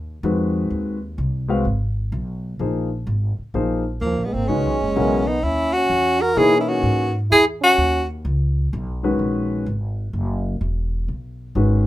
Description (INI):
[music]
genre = modal jazz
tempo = 127 BPM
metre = 4/4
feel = swing 66% on 8ths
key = unclear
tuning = A4 = 439 Hz
[part]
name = upright bass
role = bass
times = 0.0-11.9 s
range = Fb1 to Cb3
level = -23 LUFS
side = equal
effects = none
[part]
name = warm grand piano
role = accompaniment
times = 0.2-11.8 s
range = Db3 to F5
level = -22 LUFS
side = left 2 dB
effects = none
[part]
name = warm tenor saxophone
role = melody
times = 4.0-8.1 s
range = Bb3 to Bb4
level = -18 LUFS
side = equal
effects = none
[part]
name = warm trombone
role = second line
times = 4.0-8.1 s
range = F3 to Gb4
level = -24 LUFS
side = right 2 dB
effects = none
[sound]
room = moderate club reverb, RT60 0.5 s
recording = minimal, uncompressed stereo recording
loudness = -18 LUFS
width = side -15 dB against mid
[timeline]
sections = 0.0-11.9 A section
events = none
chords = 0.0 Bb9sus4; 4.5 Gb9sus4